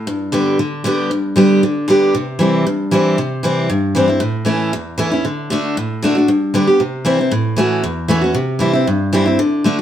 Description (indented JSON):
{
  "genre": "bluegrass",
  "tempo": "232 BPM",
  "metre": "4/4",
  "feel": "straight",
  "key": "unclear",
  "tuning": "A4 = 440 Hz",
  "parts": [
    { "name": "picked steel-string acoustic guitar", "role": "solo", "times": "0.0-9.8 s", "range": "E2 to G4", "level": "-14 LUFS", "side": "equal", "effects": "none" }
  ],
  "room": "wet studio reverb, RT60 0.7 s",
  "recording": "band playing live in one room",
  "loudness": "-14 LUFS",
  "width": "side -10 dB against mid",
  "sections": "0.0-6.3 A section; 6.3-9.8 B section",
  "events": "none",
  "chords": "0.1 G; 2.1 C; 4.2 A; 5.2 D; 6.3 G; 6.8 C; 7.3 A6; 8.4 C"
}